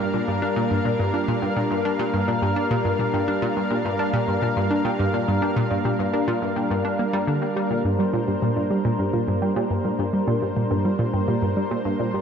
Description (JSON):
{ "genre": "ambient, sequencer-driven space music", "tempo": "105 BPM", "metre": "4/4", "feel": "straight", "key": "G minor", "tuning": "A4 = 440 Hz", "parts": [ { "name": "lush unison pad", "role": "sustained chords", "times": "0.0-12.2 s", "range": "G3 to F5", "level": "-24 LUFS", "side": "equal", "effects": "chorus" }, { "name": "analog pluck", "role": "riff", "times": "0.0-12.2 s", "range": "G2 to D4", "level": "-24 LUFS", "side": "equal", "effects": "chorus, ping-pong delay" }, { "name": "warbly dusty pluck", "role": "arpeggios", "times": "0.1-12.2 s", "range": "G3 to G5", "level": "-33 LUFS", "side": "moving between equal and right 7 dB", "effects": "chorus, auto-pan, ping-pong delay" } ], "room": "moderate plate reverb, RT60 3.5 s", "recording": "dark, warm production", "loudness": "-20 LUFS", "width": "side -7 dB against mid", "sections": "0.0-12.2 A section", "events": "none", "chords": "0.0 Gm", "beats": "0.42 | 0.99 1.56 2.14 2.71 | 3.28 3.85 4.42 4.99 | 5.56 6.14 6.71 7.28 | 7.85 8.42 8.99 9.56 | 10.14 10.71 11.28 11.85" }